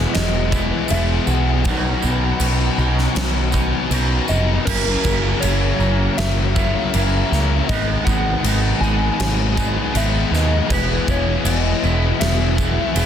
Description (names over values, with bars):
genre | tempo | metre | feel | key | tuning
rock, shoegaze and dream pop | 80 BPM | 4/4 | straight | F# mixolydian | A4 = 445 Hz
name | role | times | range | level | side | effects
soft struck synth lead | melody | 0.0-13.1 s | A#4 to G#5 | -26 LUFS | left 2 dB | chorus, digital delay
string machine, cellos | sustained chords | 0.0-13.1 s | E4 to D#6 | -31 LUFS | right 1 dB | ensemble chorus
biting overdriven guitar | riff | 0.0-13.1 s | E2 to B4 | -24 LUFS | left 12 dB | lush chorus
sludgy distorted guitar | riff | 0.0-13.1 s | E2 to B3 | -26 LUFS | right 1 dB | overdrive
twangy electric guitar | riff | 0.0-13.1 s | F#2 to E4 | -28 LUFS | right 12 dB | reverse reverb
growling picked electric bass | bass | 0.0-13.1 s | E1 to D#2 | -20 LUFS | right 1 dB | overdrive
huge arena drum kit | drums | 0.1-13.1 s | crash cymbal, kick drum, snare drum | -23 LUFS | equal | none
tambourine | percussion | 0.5-13.1 s | none | -34 LUFS | right 10 dB | none
room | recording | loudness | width
studio ambience | dense, heavily limited modern master | -16 LUFS | side -9 dB against mid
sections
0.0-4.7 A section; 4.7-13.1 B section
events
none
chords
0.0 E; 1.6 Badd9; 4.7 F#7; 7.7 G#m; 10.7 E